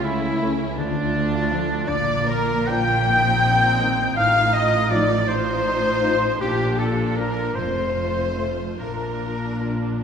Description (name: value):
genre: classical, slow romantic movement for symphony orchestra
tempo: 48-55 BPM (dotted quarters)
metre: 6/8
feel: rubato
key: Bb major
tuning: A4 = 440 Hz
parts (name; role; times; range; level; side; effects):
- warm chamber violin section; melody; 0.0-10.0 s; D4 to G5; -29 LUFS; left 2 dB; none
- clear clarinet; second line; 0.0-10.0 s; D4 to G5; -25 LUFS; left 2 dB; none
- clear oboe; second line; 0.0-10.0 s; D4 to G5; -30 LUFS; right 1 dB; none
- mellow silver concert flute; second line; 0.0-10.0 s; D5 to G6; -28 LUFS; equal; none
- rich chamber violin section; second line; 0.0-10.0 s; D4 to G5; -30 LUFS; left 1 dB; none
- warm studio viola section; accompaniment; 0.0-10.0 s; A3 to F4; -30 LUFS; right 3 dB; none
- concert harp; arpeggios; 0.0-10.0 s; F2 to D5; -30 LUFS; left 4 dB; none
- dark studio double bass section; bass; 0.0-10.0 s; F1 to D2; -28 LUFS; right 2 dB; none
- rich chamber cello section; bass; 0.0-10.0 s; C#2 to Bb2; -29 LUFS; right 2 dB; none
- dark French horn section; sustained chords; 0.4-9.7 s; Eb3 to Eb4; -32 LUFS; left 3 dB; none
room: wet concert hall reverb, RT60 2.1 s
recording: recorded in a church or concert hall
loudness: -19 LUFS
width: side -7 dB against mid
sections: 0.0-10.0 A section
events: none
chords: 0.0 A/C#; 0.8 Dm; 1.9 Bb; 3.1 Cm7/Bb; 4.2 F7/A; 6.4 Bb; 7.6 F; 8.8 Bb